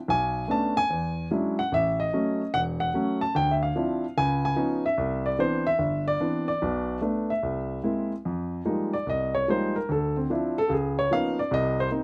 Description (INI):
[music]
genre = solo jazz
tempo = 147 BPM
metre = 4/4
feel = swing 65% on 8ths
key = F minor from 8.2 s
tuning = A4 = 441 Hz
[part]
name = warm grand piano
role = solo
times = 0.1-12.0 s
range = E1 to A5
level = -26 LUFS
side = equal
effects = none
[sound]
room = light reverb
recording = none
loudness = -26 LUFS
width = mono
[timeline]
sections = 0.0-8.2 A section; 8.2-12.0 B section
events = grand piano solo 8.2-12.0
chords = 0.1 Bm9; 0.9 E13; 1.7 A6; 3.3 Dm9; 4.2 C#9; 5.0 Cmaj9; 6.6 Bm7; 7.4 Caug7; 8.2 Fm11; 9.9 Dm7; 10.7 Db13; 11.5 Cm7